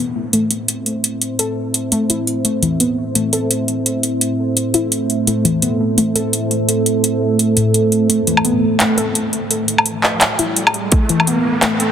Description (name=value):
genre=half-time drum and bass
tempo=170 BPM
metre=4/4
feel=swing 58% on 16ths, half-time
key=A minor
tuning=A4 = 440 Hz
part: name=deep dark ambient pad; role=sustained chords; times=0.0-11.9 s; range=A3 to E5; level=-19 LUFS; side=right 2 dB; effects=chorus, built-in reverb, sidechain pumping
part: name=warbly dusty pluck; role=arpeggios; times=0.0-11.9 s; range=A2 to A4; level=-19 LUFS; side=left 2 dB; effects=chorus, tape echo
part: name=drum and bass drum kit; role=drums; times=0.3-11.9 s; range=handclaps, hi-hat, woodblock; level=-15 LUFS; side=equal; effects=none
part: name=riser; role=sound effects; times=9.4-11.9 s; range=none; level=-26 LUFS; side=right 2 dB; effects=none
part: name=electronic kick drum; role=drums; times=10.9-11.0 s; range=none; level=-14 LUFS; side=equal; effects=overdrive
room=moderate huge ambient reverb, RT60 3.9 s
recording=dense, heavily limited modern master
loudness=-14 LUFS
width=side -9 dB against mid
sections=0.0-8.1 A section; 8.1-11.9 B section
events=build-up 8.1-11.9; riser 9.4-11.9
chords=0.0 Am